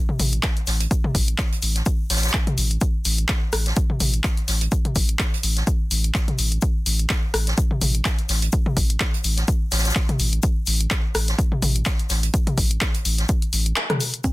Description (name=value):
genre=acid house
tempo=126 BPM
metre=4/4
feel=swing 56% on 16ths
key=unclear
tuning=A4 = 440 Hz
part: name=punchy analog drum machine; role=drums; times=0.1-14.3 s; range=congas, handclaps, hi-hat, rim click, shaker, toms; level=-24 LUFS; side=left 1 dB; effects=overdrive
part: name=saturated sub bass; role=bass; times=0.2-13.7 s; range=A1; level=-22 LUFS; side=equal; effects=sidechain pumping
part: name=open jazz drum kit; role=drums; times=0.2-14.3 s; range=hi-hat, shaker, snare drum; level=-31 LUFS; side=left 1 dB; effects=high-pass filter on hats, high-pass filter on snare, high-pass filter on perc, high-pass filter on room
part: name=electronic kick drum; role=drums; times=0.4-14.3 s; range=none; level=-21 LUFS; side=equal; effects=overdrive
room=little or no reverb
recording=dense, heavily limited modern master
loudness=-19 LUFS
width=side -19 dB against mid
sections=0.0-14.2 A section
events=band accent 13.8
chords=none